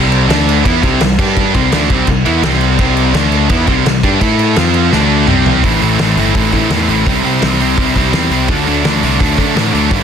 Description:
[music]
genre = punk rock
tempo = 168 BPM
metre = 4/4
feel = straight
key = C major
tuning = A4 = 435 Hz
[part]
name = distorted electric guitar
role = riff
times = 0.0-10.0 s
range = G2 to A4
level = -16 LUFS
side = right 14 dB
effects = overdrive
[part]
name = scooped high-gain guitar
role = riff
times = 0.0-10.0 s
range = G2 to A4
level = -20 LUFS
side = equal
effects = distortion
[part]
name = sludgy distorted guitar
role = riff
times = 0.0-10.0 s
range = G2 to A4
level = -17 LUFS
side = left 12 dB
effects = overdrive
[part]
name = modern bright picked electric bass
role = bass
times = 0.0-10.0 s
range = G1 to D3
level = -16 LUFS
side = equal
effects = none
[part]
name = loose indie drum kit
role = drums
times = 0.1-10.0 s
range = crash cymbal, hi-hat, kick drum, snare drum, toms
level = -16 LUFS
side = equal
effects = none
[sound]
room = little or no reverb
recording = dense, heavily limited modern master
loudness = -10 LUFS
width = side -8 dB against mid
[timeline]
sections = 0.0-5.6 A section; 5.6-10.0 B section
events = drum fill 4.9-5.6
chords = 0.3 D5; 0.7 C; 1.2 G5; 1.5 C; 3.1 D5; 3.5 C; 4.2 A5; 4.6 F5; 4.9 D5; 5.3 C5; 5.6 Am; 7.1 C; 8.5 D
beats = 0.29 0.65 1.01 | 1.36 1.72 2.08 2.43 | 2.79 3.15 3.50 3.86 | 4.21 4.57 4.92 5.28 | 5.64 5.99 6.35 6.71 | 7.06 7.42 7.77 8.13 | 8.48 8.84 9.20 9.55 | 9.91

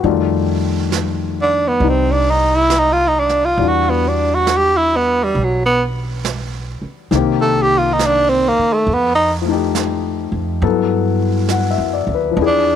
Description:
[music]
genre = jazz ballad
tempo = 68 BPM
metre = 4/4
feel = swing 66% on 8ths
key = unclear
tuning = A4 = 436 Hz
[part]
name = warm grand piano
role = accompaniment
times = 0.0-12.8 s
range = Eb3 to F#5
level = -19 LUFS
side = left 10 dB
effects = none
[part]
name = upright bass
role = bass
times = 0.0-12.8 s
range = B1 to G2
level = -21 LUFS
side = right 2 dB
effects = none
[part]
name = jazz brush drum kit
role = drums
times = 0.0-12.8 s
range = brushed snare drum, hi-hat, snare drum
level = -27 LUFS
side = right 10 dB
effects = none
[part]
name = growling tenor saxophone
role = melody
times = 1.4-12.8 s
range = F#3 to A4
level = -14 LUFS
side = right 2 dB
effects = none
[sound]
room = light reverb, small room ambience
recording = 1960s-style stereo with parts hard left and right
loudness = -14 LUFS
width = side -9 dB against mid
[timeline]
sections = 0.0-12.8 A section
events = tenor saxophone solo 0.0-12.8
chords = 0.0 F9; 3.6 Em9; 7.1 Cm7; 8.9 F9; 10.6 Gmaj13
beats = | 0.02 0.91 1.79 2.68 | 3.57 4.46 5.34 6.23 | 7.11 7.99 8.87 9.74 | 10.62 11.49 12.37

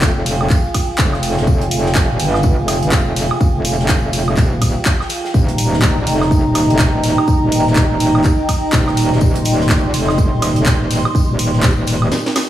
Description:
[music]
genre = bass house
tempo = 124 BPM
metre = 4/4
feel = swing 60% on 16ths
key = unclear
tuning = A4 = 440 Hz
[part]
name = dark analog pad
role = sustained chords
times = 0.0-12.5 s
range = Eb4 to C6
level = -20 LUFS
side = right 2 dB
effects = chorus, sidechain pumping
[part]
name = metallic wobble bass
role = bass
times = 0.0-12.1 s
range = Eb1 to Bb1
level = -17 LUFS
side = equal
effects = chorus, overdrive, sidechain pumping
[part]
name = electronic kick drum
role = drums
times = 0.0-11.8 s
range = none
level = -15 LUFS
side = equal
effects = none
[part]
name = house drum kit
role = drums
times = 0.0-12.5 s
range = handclaps, hi-hat, ride cymbal, snare drum, woodblock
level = -21 LUFS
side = right 1 dB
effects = none
[part]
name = modern studio drum kit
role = drums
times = 0.0-12.5 s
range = hi-hat, snare drum, tambourine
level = -29 LUFS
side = equal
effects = high-pass filter on hats, high-pass filter on snare, high-pass filter on perc, high-pass filter on room
[sound]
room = light reverb, small room ambience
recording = studio reverb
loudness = -13 LUFS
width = side -12 dB against mid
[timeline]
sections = 0.0-12.5 A section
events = drum fill 12.1-12.5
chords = 0.0 Fmadd9; 5.3 Eb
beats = 0.02 0.50 0.99 | 1.47 1.96 2.44 2.92 | 3.41 3.89 4.38 4.86 | 5.34 5.83 6.31 6.79 | 7.28 7.76 8.25 8.73 | 9.21 9.70 10.18 10.66 | 11.15 11.63 12.12

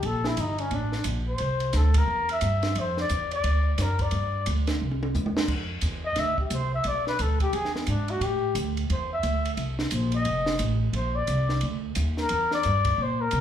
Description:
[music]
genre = jazz, small-group swing and bop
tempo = 176 BPM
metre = 4/4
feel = swing 63% on 8ths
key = F major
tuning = A4 = 441 Hz
[part]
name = breathy flugelhorn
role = melody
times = 0.0-13.4 s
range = B3 to E5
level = -28 LUFS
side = left 2 dB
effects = slapback echo
[part]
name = upright bass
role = bass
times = 0.0-13.4 s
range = F1 to C3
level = -26 LUFS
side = equal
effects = none
[part]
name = compact cocktail drum kit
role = drums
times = 0.0-13.4 s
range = crash cymbal, hi-hat, kick drum, ride cymbal, snare drum, toms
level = -32 LUFS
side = right 1 dB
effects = none
[sound]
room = light reverb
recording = live gig heard through the venue's PA, club reverb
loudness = -24 LUFS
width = side -10 dB against mid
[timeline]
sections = 0.0-5.5 A section; 5.5-13.4 A section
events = flugelhorn solo 0.0-13.4; drum fill 4.8-5.5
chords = 0.0 Bbmaj7; 1.4 C7; 2.8 Dm9; 3.4 D; 4.1 G5; 4.8 C; 5.5 F5; 6.9 Bm7; 7.5 E; 8.2 A5; 9.6 Bbsus2; 10.3 F7; 10.9 Bb; 12.3 C7 (rootless)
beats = | 0.03 0.38 0.72 1.06 | 1.40 1.74 2.08 2.42 | 2.76 3.10 3.44 3.79 | 4.13 4.47 4.81 5.15 | 5.49 5.83 6.17 6.51 | 6.86 7.20 7.54 7.88 | 8.22 8.56 8.90 9.24 | 9.58 9.92 10.26 10.60 | 10.94 11.28 11.62 11.96 | 12.30 12.64 12.98 13.32

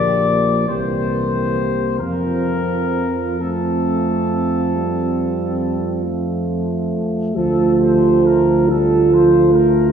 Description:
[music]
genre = classical, hymn-like piece for brass band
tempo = 43-51 BPM (dotted quarters)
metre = 12/8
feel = rubato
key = F major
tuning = A4 = 439 Hz
[part]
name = warm trumpet section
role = melody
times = 0.0-9.9 s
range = A4 to D5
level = -23 LUFS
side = left 6 dB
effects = none
[part]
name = dark French horn section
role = second line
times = 0.0-9.9 s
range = F4 to A4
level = -25 LUFS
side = right 10 dB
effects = none
[part]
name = mellow euphonium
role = accompaniment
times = 0.0-9.9 s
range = F3 to F4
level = -18 LUFS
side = right 2 dB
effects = none
[part]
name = mellow trombone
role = accompaniment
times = 0.0-9.9 s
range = E3 to A3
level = -24 LUFS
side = equal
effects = none
[part]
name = mellow tuba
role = bass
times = 0.0-9.9 s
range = Bb1 to F2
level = -22 LUFS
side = equal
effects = none
[sound]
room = wet church reverb, RT60 2.8 s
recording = heard from further back in the room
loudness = -15 LUFS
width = side -7 dB against mid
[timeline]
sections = 0.0-7.4 A section; 7.4-9.9 B section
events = none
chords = 0.0 Gm7/Bb; 0.7 C7; 2.0 F; 7.4 Dm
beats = 0.68 | 2.00 3.40 4.75 6.05 | 7.36 8.70 9.91

